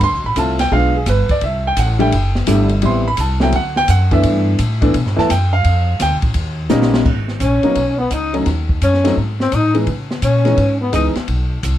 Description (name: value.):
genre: jazz, small-group swing and bop.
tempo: 170 BPM.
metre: 4/4.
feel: swing 65% on 8ths.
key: G# minor from 7.1 s.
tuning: A4 = 442 Hz.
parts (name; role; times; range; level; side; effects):
warm grand piano; accompaniment; 0.0-11.1 s; E3 to C6; -17 LUFS; equal; none.
upright bass; bass; 0.0-11.8 s; F#1 to C#3; -17 LUFS; equal; none.
open jazz drum kit; drums; 0.0-11.7 s; crash cymbal, hi-hat, kick drum, ride cymbal, snare drum; -22 LUFS; left 1 dB; none.
breathy tenor saxophone; melody; 7.4-11.1 s; B3 to D#4; -18 LUFS; left 4 dB; none.
growling trombone; second line; 7.4-11.1 s; B3 to D#4; -21 LUFS; right 3 dB; none.
room: little or no reverb.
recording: close, detailed microphones.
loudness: -13 LUFS.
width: side -12 dB against mid.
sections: 0.0-7.1 A section; 7.1-11.8 B section.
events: drum fill 6.7-7.1.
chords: 0.0 Dm7; 0.7 G7b9; 1.4 C69; 2.8 Am7; 3.5 D; 4.2 G6; 5.6 F; 6.3 D#7; 7.1 G#m7; 8.5 D#m7b5; 9.2 G#5; 9.9 C#m9; 11.3 N.C..